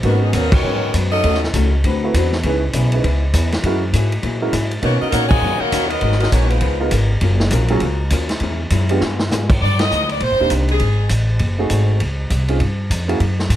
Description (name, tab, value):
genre	jazz, big band swing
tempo	201 BPM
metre	4/4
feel	swing 61% on 8ths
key	G# minor, C minor from 9.6 s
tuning	A4 = 440 Hz
part	bright saxophone section	melody	0.0-1.4, 4.8-6.8, 9.6-11.1 s	D#3 to G#5	-20 LUFS	equal	none
part	muted trombone section	second line	0.0-1.4, 4.8-6.8 s	A#2 to F#4	-25 LUFS	equal	none
part	warm baby grand piano	accompaniment	0.0-13.2 s	F#3 to B4	-22 LUFS	right 2 dB	none
part	upright bass	bass	0.0-13.6 s	Eb1 to B2	-18 LUFS	equal	none
part	swinging big-band drum kit	drums	0.0-13.6 s	crash cymbal, hi-hat, kick drum, ride cymbal, snare drum	-22 LUFS	equal	none
part	archtop guitar, miked and amplified	accompaniment	0.1-9.5 s	G#2 to B4	-25 LUFS	left 6 dB	none
room	little or no reverb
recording	none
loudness	-15 LUFS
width	side -12 dB against mid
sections	0.0-9.6 A section; 9.6-13.6 B section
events	band accent 0.5, 5.3, 9.8; drum fill 9.0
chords	0.0 G#m11; 1.2 D#m7b5; 1.8 D13; 2.4 C#m7; 3.6 F#9; 4.8 Bmaj9; 6.0 G#m9; 6.6 C#13; 7.2 F#maj7; 8.4 A#m7b5; 9.0 G7b9; 9.6 Cm9; 10.8 Ab7b9; 12.0 Dbmaj7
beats	| 0.04 0.34 0.64 0.94 | 1.24 1.53 1.83 2.13 | 2.43 2.73 3.03 3.33 | 3.63 3.92 4.22 4.52 | 4.82 5.12 5.42 5.72 | 6.02 6.32 6.62 6.92 | 7.21 7.51 7.81 8.11 | 8.41 8.71 9.01 9.31 | 9.61 9.91 10.21 10.51 | 10.81 11.11 11.40 11.70 | 12.00 12.30 12.60 12.90 | 13.20 13.50